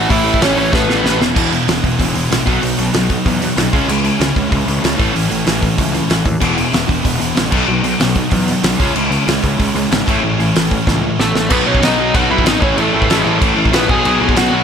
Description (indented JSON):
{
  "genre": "punk rock",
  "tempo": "189 BPM",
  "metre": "4/4",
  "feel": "straight",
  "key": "E major",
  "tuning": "A4 = 440 Hz",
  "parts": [
    { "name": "bluesy overdriven lead guitar", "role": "melody", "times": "0.0-1.2, 11.2-14.6 s", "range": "A3 to G#5", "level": "-17 LUFS", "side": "equal", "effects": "distortion" },
    { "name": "crunchy overdriven guitar", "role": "riff", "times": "0.0-14.6 s", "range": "E2 to C#4", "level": "-20 LUFS", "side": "left 11 dB", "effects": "none" },
    { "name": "crunchy overdriven guitar", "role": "riff", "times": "0.0-14.6 s", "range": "E2 to C#4", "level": "-20 LUFS", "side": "right 11 dB", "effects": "none" },
    { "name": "tight distorted guitar", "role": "riff", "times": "0.0-14.6 s", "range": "A2 to E4", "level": "-21 LUFS", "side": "right 2 dB", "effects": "distortion" },
    { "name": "fuzz picked electric bass", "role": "bass", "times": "0.0-14.6 s", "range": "E1 to E2", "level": "-20 LUFS", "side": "equal", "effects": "overdrive" },
    { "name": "loose indie drum kit", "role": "drums", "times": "0.1-14.4 s", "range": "crash cymbal, hi-hat, kick drum, snare drum", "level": "-17 LUFS", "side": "equal", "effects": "none" }
  ],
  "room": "light reverb",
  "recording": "none",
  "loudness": "-12 LUFS",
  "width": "side -7 dB against mid",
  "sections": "0.0-1.4 A section; 1.4-11.5 B section; 11.5-14.6 C section",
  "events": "drum fill 0.7-1.4, 10.9-11.5",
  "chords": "0.0 A; 1.2 E5; 1.4 E; 2.5 B; 3.7 C#m; 5.0 A; 6.4 E; 7.5 B; 8.8 C#m; 10.1 A; 11.5 B; 12.6 A; 13.9 B",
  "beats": "| 0.10 0.42 0.73 1.05 | 1.36 1.68 1.99 2.31 | 2.62 2.94 3.26 3.57 | 3.89 4.20 4.52 4.84 | 5.15 5.47 5.79 6.10 | 6.42 6.74 7.05 7.37 | 7.69 8.01 8.32 8.64 | 8.96 9.28 9.60 9.91 | 10.23 10.55 10.87 11.19 | 11.51 11.82 12.14 12.46 | 12.78 13.10 13.41 13.73 | 14.05 14.36"
}